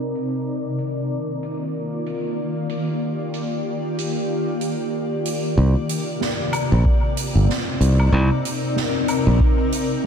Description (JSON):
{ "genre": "ambient dub", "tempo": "94 BPM", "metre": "4/4", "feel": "swing 59% on 16ths", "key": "C minor", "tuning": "A4 = 441 Hz", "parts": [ { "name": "granular cloud pad", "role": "sustained chords", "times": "0.0-10.1 s", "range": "C3 to D5", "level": "-23 LUFS", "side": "left 1 dB", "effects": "built-in reverb" }, { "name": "soft-mallet drum kit", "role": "drums", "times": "0.1-10.1 s", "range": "hi-hat, snare drum, woodblock", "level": "-28 LUFS", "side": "right 2 dB", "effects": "studio reverb, dub echo" }, { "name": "modern bright fingered electric bass", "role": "bass", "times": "5.6-9.4 s", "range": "G1 to C2", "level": "-15 LUFS", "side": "equal", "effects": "none" }, { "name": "electronic kick drum", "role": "drums", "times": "6.9-9.6 s", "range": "none", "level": "-18 LUFS", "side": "equal", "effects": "studio reverb" } ], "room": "light reverb, small room ambience", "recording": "low-pass filter", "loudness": "-19 LUFS", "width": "side -7 dB against mid", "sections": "0.0-5.6 A section; 5.6-10.1 B section", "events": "filter sweep on ambient pad 0.0-5.6; filter sweep 0.0-5.6", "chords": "0.5 Ebmaj7; 5.6 Cm7" }